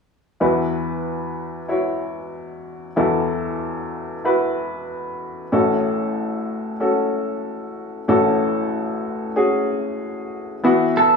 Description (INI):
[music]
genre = pop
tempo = 94 BPM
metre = 4/4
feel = straight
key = E major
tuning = A4 = 440 Hz
[part]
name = warm upright piano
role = accompaniment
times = 0.4-11.2 s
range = A1 to C#5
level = -20 LUFS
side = left 1 dB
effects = none
[part]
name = clean electric guitar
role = melody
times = 11.0-11.2 s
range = A4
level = -13 LUFS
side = right 3 dB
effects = none
[sound]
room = moderate studio reverb, RT60 0.9 s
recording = band playing live in one room, small room ambience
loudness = -19 LUFS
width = side -4 dB against mid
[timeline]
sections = 0.4-10.6 A section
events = none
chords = 0.4 Esus2; 5.5 A6; 10.6 Esus2